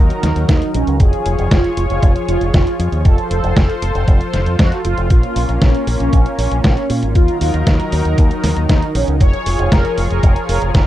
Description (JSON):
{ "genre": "italo disco", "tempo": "117 BPM", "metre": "4/4", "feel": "straight", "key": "unclear", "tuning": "A4 = 440 Hz", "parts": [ { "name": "lush unison pad", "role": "sustained chords", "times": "0.0-10.9 s", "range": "Eb3 to Db5", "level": "-21 LUFS", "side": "equal", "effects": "chorus" }, { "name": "fingered electric bass with an envelope filter", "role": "bass", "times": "0.0-10.9 s", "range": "F1 to Bb2", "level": "-18 LUFS", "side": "equal", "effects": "tube saturation" }, { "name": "detuned 8-bit digital drum machine", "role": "drums", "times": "0.1-10.8 s", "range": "hi-hat, snare drum", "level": "-20 LUFS", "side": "equal", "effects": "none" }, { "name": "mellow synth brass", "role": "melody", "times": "0.5-10.9 s", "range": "Db4 to Db5", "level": "-22 LUFS", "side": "right 1 dB", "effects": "chorus, phaser, tape echo" }, { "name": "electronic kick drum", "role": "drums", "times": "0.5-10.8 s", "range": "none", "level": "-13 LUFS", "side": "equal", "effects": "none" } ], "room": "little or no reverb", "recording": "dry, close 1970s-style studio recording", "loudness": "-12 LUFS", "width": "side -14 dB against mid", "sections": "0.0-10.9 A section", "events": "none", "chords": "0.0 Ebm; 1.0 Db/F; 3.1 F; 5.1 Bbm; 7.2 Ebm; 9.2 Db/F" }